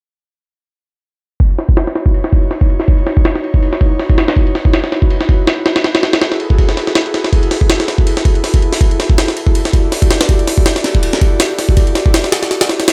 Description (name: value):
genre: drum and bass, jungle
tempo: 162 BPM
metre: 4/4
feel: swing 55% on 16ths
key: C# minor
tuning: A4 = 441 Hz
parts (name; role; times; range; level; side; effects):
- airy breathy pad; sustained chords; 1.4-12.9 s; D#4 to D5; -22 LUFS; equal; chorus
- jungle sampler-style drum kit; drums; 1.4-12.9 s; hi-hat, kick drum, ride cymbal, snare drum; -14 LUFS; equal; low-pass filter on cymbals, low-pass filter on kick, low-pass filter on snare, low-pass filter on hats
room: little or no reverb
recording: none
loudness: -13 LUFS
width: mono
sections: 1.4-12.9 A section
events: filter sweep on drum 1.4-12.9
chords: 1.4 C#m11; 5.8 F#m11; 9.6 Em11